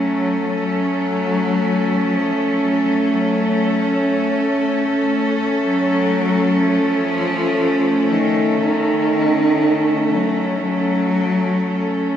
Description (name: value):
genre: dark ambient drone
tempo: 60 BPM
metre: 4/4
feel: straight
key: unclear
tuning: A4 = 440 Hz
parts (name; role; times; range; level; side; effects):
- warm cello; melody; 0.0-12.1 s; Eb3 to Gb3; -20 LUFS; left 1 dB; dub echo
- rich chamber cello section; sustained chords; 0.0-12.2 s; A3 to A4; -18 LUFS; equal; none
room: wet plate reverb, RT60 3.3 s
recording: echo-heavy mix, small room reverb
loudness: -16 LUFS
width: side -9 dB against mid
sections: 0.0-12.2 A section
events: none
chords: 0.0 Gbm